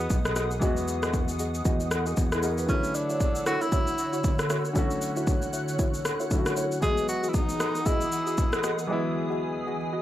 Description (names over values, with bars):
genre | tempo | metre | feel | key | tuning
amapiano | 116 BPM | 4/4 | swing 58% on 16ths | unclear | A4 = 440 Hz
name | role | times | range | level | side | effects
warm tenor saxophone | melody | 0.0-8.6 s | B3 to G#4 | -31 LUFS | equal | tape echo
warm grand piano | accompaniment | 0.0-10.0 s | D3 to D#5 | -32 LUFS | left 1 dB | none
hollow soft pad | sustained chords | 0.0-10.0 s | D3 to F#6 | -35 LUFS | equal | ensemble chorus, sidechain pumping
deep mellow chord stab | stabs | 0.0-10.0 s | E4 to D#5 | -34 LUFS | equal | chorus, tape echo
fingered electric bass | bass | 0.0-2.7 s | B1 to E2 | -30 LUFS | equal | none
deep house drum kit | drums | 0.1-8.9 s | kick drum, rim click, shaker | -27 LUFS | equal | overdrive
room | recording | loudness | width
little or no reverb | dry, gritty hardware recording, vinyl crackle | -24 LUFS | side -13 dB against mid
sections
0.0-10.0 A section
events
break 8.9-10.0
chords
0.0 Emaj9; 2.7 Dmaj9; 6.8 Emaj9